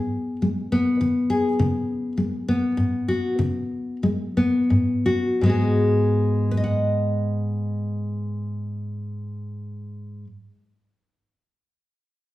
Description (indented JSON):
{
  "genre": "folk",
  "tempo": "82-103 BPM",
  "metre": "3/4",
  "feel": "straight",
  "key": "G# minor",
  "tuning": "A4 = 440 Hz",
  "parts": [
    { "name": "nylon-string guitar", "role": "accompaniment", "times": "0.0-11.4 s", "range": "G#2 to F#5", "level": "-21 LUFS", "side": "left 1 dB", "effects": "none" }
  ],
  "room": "wet large studio reverb, RT60 1.1 s",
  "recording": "heard from further back in the room",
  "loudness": "-20 LUFS",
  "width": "side -16 dB against mid",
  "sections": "0.0-5.4 A section; 5.4-9.8 B section",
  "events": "slowing down 1.6-5.4",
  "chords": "0.0 G#m; 1.6 C#5; 5.4 G#m7"
}